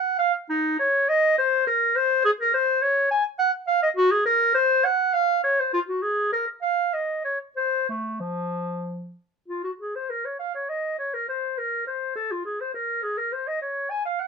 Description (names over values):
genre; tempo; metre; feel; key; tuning
classical, baroque-style fantasia for unaccompanied clarinet; 91-107 BPM; 3/4; rubato; Bb minor; A4 = 441 Hz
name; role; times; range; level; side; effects
warm clarinet; solo; 0.0-14.3 s; F3 to Ab5; -21 LUFS; equal; none
room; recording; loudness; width
moderate studio reverb, RT60 0.7 s; minimal, uncompressed stereo recording; -21 LUFS; side -5 dB against mid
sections
0.0-9.5 A section; 9.5-14.3 A section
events
none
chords
none